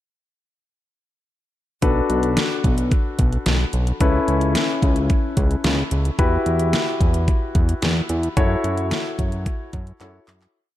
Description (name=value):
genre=synth-pop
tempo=110 BPM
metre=4/4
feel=straight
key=B minor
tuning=A4 = 440 Hz
part: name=warm concert grand piano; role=accompaniment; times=1.8-10.6 s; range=C#4 to C#5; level=-24 LUFS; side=left 3 dB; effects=none
part: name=fat analog bass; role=bass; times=1.8-10.5 s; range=B1 to F#2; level=-21 LUFS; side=equal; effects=none
part: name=pop drum kit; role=drums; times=1.8-10.5 s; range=handclaps, hi-hat, kick drum, snare drum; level=-21 LUFS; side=equal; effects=overdrive
room=light reverb, digital ambience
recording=dark, warm production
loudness=-18 LUFS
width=side -14 dB against mid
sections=1.8-10.6 verse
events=fade-out 8.4-10.6; drum fill 10.0-10.6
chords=1.8 Bm7; 4.0 Aadd9/C#; 6.2 Emadd9; 8.4 F#m7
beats=| 1.82 2.37 2.92 3.46 | 4.01 4.55 5.10 5.64 | 6.19 6.73 7.28 7.82 | 8.37 8.91 9.46 10.01